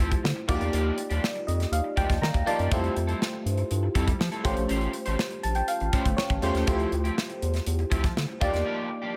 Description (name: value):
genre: polished 1980s jazz-funk pop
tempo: 121 BPM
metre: 4/4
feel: straight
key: unclear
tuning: A4 = 439 Hz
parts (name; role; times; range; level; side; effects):
- FM electric piano; accompaniment; 0.0-9.2 s; A3 to Bb5; -32 LUFS; equal; phaser, lush chorus
- electric guitar at the edge of break-up; riff; 0.0-9.2 s; F3 to B#4; -36 LUFS; equal; analog chorus
- round analog bass; bass; 0.0-8.6 s; G1 to F3; -30 LUFS; equal; none
- modern studio drum kit; drums; 0.0-8.7 s; hi-hat, kick drum, snare drum; -31 LUFS; equal; none
room: light reverb, small room ambience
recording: none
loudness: -27 LUFS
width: mono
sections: 0.0-9.2 A section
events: FM electric piano fill 1.2-2.7, 5.2-6.7; break 8.7-9.2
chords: 0.5 Ebmaj9; 2.7 Fmaj9; 4.5 A7alt; 6.7 Dm11; 8.4 Ebmaj9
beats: 0.24 | 0.73 1.23 1.72 2.22 | 2.72 3.21 3.71 4.20 | 4.70 5.19 5.69 6.19 | 6.68 7.18 7.67 8.17 | 8.66 9.16